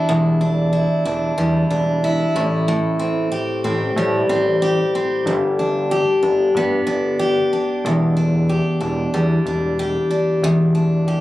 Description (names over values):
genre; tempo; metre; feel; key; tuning
acoustic pop; 93 BPM; 4/4; straight; E minor; A4 = 437 Hz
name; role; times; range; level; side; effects
picked steel-string acoustic guitar; accompaniment; 0.0-11.2 s; E2 to G4; -17 LUFS; equal; none
fat analog bass; bass; 0.1-11.2 s; E1 to A2; -22 LUFS; equal; none
room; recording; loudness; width
moderate studio reverb, RT60 0.7 s; recorded on a phone in the room, club reverb, compression; -16 LUFS; side -16 dB against mid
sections
0.0-11.2 A section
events
none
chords
0.0 Em7; 2.4 Am7; 5.3 G; 7.8 Em7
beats
| 0.10 0.74 1.39 2.03 | 2.68 3.32 3.97 4.62 | 5.26 5.91 6.55 7.20 | 7.84 8.49 9.13 9.78 | 10.42 11.07